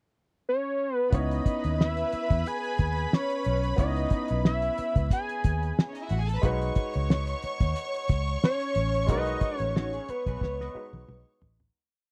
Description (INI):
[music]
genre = lush 1970s-style soul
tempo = 90 BPM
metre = 4/4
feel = swing 54% on 16ths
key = C# minor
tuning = A4 = 440 Hz
[part]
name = fat analog lead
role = melody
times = 0.5-11.4 s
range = B4 to G#5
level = -32 LUFS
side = equal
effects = chorus
[part]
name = clear studio violin section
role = second line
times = 1.1-11.4 s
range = C#4 to C#6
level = -38 LUFS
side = equal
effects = none
[part]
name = clear baby grand piano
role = accompaniment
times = 1.1-11.8 s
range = G#3 to C#5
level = -38 LUFS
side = equal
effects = none
[part]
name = vintage muted fingered electric bass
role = bass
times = 1.1-11.7 s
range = A1 to E2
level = -32 LUFS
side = equal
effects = none
[part]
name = cloth-damped thuddy drum kit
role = drums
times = 1.1-11.7 s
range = hi-hat, kick drum, snare drum, toms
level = -27 LUFS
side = equal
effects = none
[part]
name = electric guitar through a small old amp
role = riff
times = 9.8-11.6 s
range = D#4 to D#5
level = -45 LUFS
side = equal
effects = none
[sound]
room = little or no reverb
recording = dry, close 1970s-style studio recording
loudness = -28 LUFS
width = mono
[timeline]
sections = 0.0-1.1 pickup bar; 1.1-11.7 verse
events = fade-out 9.1-11.7; drum fill 10.4-11.7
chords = 0.0 N.C.; 1.1 C#m9; 6.4 G#m7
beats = 0.46 | 1.13 1.79 2.46 3.12 | 3.78 4.45 5.11 5.77 | 6.43 7.10 7.76 8.42 | 9.09 9.75 10.41 11.08